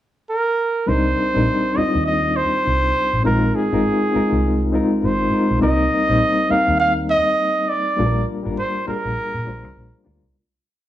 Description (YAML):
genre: lush 1970s-style soul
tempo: 101 BPM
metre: 4/4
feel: swing 58% on 16ths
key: C minor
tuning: A4 = 440 Hz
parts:
  - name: warm flugelhorn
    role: melody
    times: 0.3-10.0 s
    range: Ab4 to F5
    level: -20 LUFS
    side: right 1 dB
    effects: none
  - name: reed electric piano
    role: accompaniment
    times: 0.9-10.4 s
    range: G3 to C5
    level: -20 LUFS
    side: left 2 dB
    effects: fast tremolo
  - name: vintage muted fingered electric bass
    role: bass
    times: 0.9-10.3 s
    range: Ab1 to Bb2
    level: -23 LUFS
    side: equal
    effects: none
room: wet large studio reverb, RT60 0.8 s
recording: band playing live in one room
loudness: -16 LUFS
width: side -12 dB against mid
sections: 0.0-0.9 pickup bar; 0.9-10.3 verse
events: fade-out 8.0-10.3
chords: 0.0 N.C.; 0.9 Cm7; 3.3 Bb9sus4; 5.6 Cm7; 8.0 Gm7